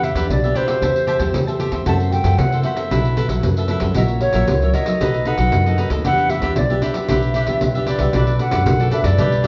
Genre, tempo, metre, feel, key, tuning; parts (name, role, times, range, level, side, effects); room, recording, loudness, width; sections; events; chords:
samba and choro; 115 BPM; 4/4; straight; E minor; A4 = 440 Hz
hollow concert flute; melody; 0.0-9.5 s; C5 to A5; -24 LUFS; equal; slapback echo
cavaquinho; accompaniment; 0.0-9.5 s; D4 to A5; -28 LUFS; equal
nylon-string guitar; accompaniment; 0.0-9.5 s; F#2 to G4; -27 LUFS; equal
upright bass; bass; 0.0-9.5 s; A#1 to C3; -22 LUFS; equal
pandeiro; percussion; 0.0-9.5 s; -25 LUFS; equal
wet large studio reverb, RT60 0.9 s; heard from further back in the room, nothing above 7.5 kHz; -18 LUFS; mono
0.0-8.1 A section; 8.1-9.5 B section
0.0 Em7; 0.8 Am7/E; 1.9 F#m7b5; 2.9 B7sus4; 4.0 F#7/A#; 5.0 B7; 6.1 Em7; 8.1 Bm7